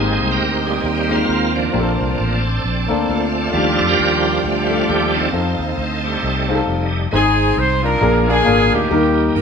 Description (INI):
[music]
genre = uptempo gospel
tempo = 134 BPM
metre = 4/4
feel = swing 59% on 8ths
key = Bb major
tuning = A4 = 442 Hz
[part]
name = clear upright piano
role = accompaniment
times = 0.0-9.4 s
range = Ab2 to C5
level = -20 LUFS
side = left 3 dB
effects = none
[part]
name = bright tonewheel organ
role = sustained chords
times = 0.0-9.4 s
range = F3 to Bb4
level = -19 LUFS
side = right 2 dB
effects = slow rotary speaker, chorus vibrato
[part]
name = warm studio string section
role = sustained chords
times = 0.0-7.1 s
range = C5 to A5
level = -30 LUFS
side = right 1 dB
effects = none
[part]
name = fingered electric bass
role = bass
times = 0.0-9.4 s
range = F1 to G2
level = -21 LUFS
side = equal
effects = none
[part]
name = mellow horn section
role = melody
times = 7.1-9.4 s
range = Bb3 to C5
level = -16 LUFS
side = equal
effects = none
[sound]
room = moderate large studio reverb, RT60 1.1 s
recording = band playing live in one room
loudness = -15 LUFS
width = side -6 dB against mid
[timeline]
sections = 0.0-7.1 A section; 7.1-9.4 B section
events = tonewheel organ solo 0.0-7.1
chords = 0.0 Abmaj9; 1.7 Bbmaj9; 3.5 Ebmaj9#11; 5.3 F7; 7.1 Ab; 8.0 Bb7; 8.9 Eb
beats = 0.40 0.84 1.29 | 1.74 2.19 2.64 3.08 | 3.53 3.98 4.43 4.88 | 5.33 5.78 6.23 6.67 | 7.12 7.57 8.02 8.46 | 8.91 9.36